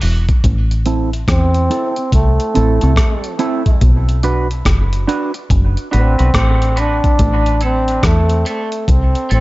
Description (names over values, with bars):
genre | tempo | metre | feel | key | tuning
dub reggae | 71 BPM | 4/4 | swing 63% on 16ths | A dorian | A4 = 440 Hz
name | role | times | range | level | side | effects
electric guitar at the edge of break-up | accompaniment | 0.0-9.4 s | A3 to B4 | -22 LUFS | right 4 dB | analog chorus, high-pass filter, low-pass filter, tape echo
deep dub fingered electric bass | bass | 0.0-9.4 s | E1 to E2 | -14 LUFS | equal | none
breakbeat sampler-style drum kit | drums | 0.0-9.4 s | hi-hat, kick drum, rim click | -16 LUFS | equal | none
clear trombone | melody | 1.3-9.4 s | A3 to D4 | -19 LUFS | equal | low-pass filter, tape echo
room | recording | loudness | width
light reverb, digital ambience | echo-heavy mix, nothing above 7.6 kHz | -12 LUFS | side -19 dB against mid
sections
0.4-9.4 A section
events
break 0.0-0.4; filter sweep 0.4-9.4; filter sweep on clean electric guitar 3.8-9.4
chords
0.4 Am; 3.8 Bm; 7.2 Am